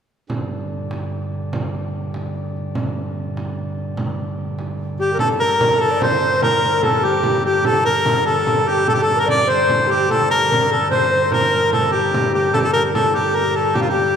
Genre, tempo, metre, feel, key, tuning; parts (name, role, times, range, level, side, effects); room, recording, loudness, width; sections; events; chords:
medieval dance; 98 BPM (dotted quarters); 6/8; straight; G minor; A4 = 437 Hz
chamber organ, sparkling flutes; drone; 0.3-14.2 s; G2 to D3; -27 LUFS; right 1 dB
frame drum; percussion; 0.3-13.9 s; -25 LUFS; right 2 dB
mellow harmonica; melody; 5.0-14.2 s; F4 to D5; -17 LUFS; equal
alto recorder; second line; 5.0-14.2 s; G4 to D5; -21 LUFS; left 5 dB
concert harp; second line; 5.0-14.2 s; G4 to D5; -26 LUFS; right 3 dB
wet cathedral reverb, RT60 4.6 s; heard from further back in the room; -16 LUFS; side -7 dB against mid
0.3-5.2 A section; 5.2-14.2 B section